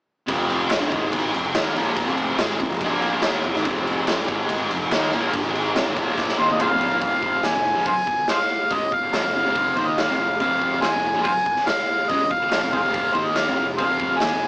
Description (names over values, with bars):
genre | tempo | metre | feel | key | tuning
garage rock duo or trio | 142 BPM | 4/4 | straight | F minor | A4 = 442 Hz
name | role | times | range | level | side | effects
thick fuzz guitar | riff | 0.3-14.5 s | F2 to Eb4 | -25 LUFS | equal | distortion
fuzz picked electric bass | bass | 0.3-14.5 s | F1 to Eb2 | -30 LUFS | equal | overdrive
raw garage drum kit | drums | 0.3-14.3 s | crash cymbal, hi-hat, kick drum, snare drum, toms | -24 LUFS | equal | none
group handclap | percussion | 0.7-14.3 s | none | -31 LUFS | equal | none
overdriven harmonica | melody | 6.4-14.5 s | Ab4 to Ab5 | -20 LUFS | equal | none
room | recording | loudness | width
moderate booth ambience, RT60 0.2 s | rough rehearsal-room recording, small speaker sound | -19 LUFS | side -32 dB against mid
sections
0.3-7.0 A section; 7.0-14.5 B section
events
drum fill 6.2-7.0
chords
0.3 F5; 0.9 Ab5; 1.3 Fm; 2.8 Bb5; 3.2 Fm; 4.3 Ab5; 4.7 Fm; 6.0 Bb5; 6.4 F5; 7.0 Fm